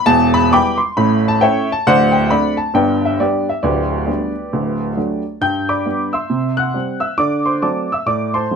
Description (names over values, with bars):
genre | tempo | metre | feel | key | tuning
jazz, stride piano | 135 BPM | 4/4 | swing 60% on 8ths | G major | A4 = 438 Hz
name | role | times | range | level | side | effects
warm upright piano | solo | 0.0-8.6 s | D1 to G6 | -14 LUFS | equal | none
room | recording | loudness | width
moderate small room ambience, RT60 0.5 s | none | -14 LUFS | side -6 dB against mid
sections
0.0-5.4 A section; 5.4-8.6 B section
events
none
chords
0.1 Em; 1.0 A; 1.9 D7; 2.7 G; 3.6 G/D; 4.5 D; 5.4 G; 6.3 C; 7.2 D7